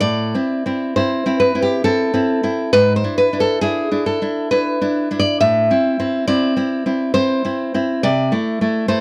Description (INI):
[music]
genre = romantic piece for solo classical guitar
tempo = 68 BPM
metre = 3/4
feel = rubato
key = A minor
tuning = A4 = 443 Hz
[part]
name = nylon-string guitar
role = solo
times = 0.0-9.0 s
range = G#2 to E5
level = -18 LUFS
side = equal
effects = none
[sound]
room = light reverb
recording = dark, warm production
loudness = -18 LUFS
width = mono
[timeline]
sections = 0.0-9.0 A section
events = none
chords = 0.0 Am; 2.7 E7/G#; 5.4 Am (rootless); 8.0 Am/C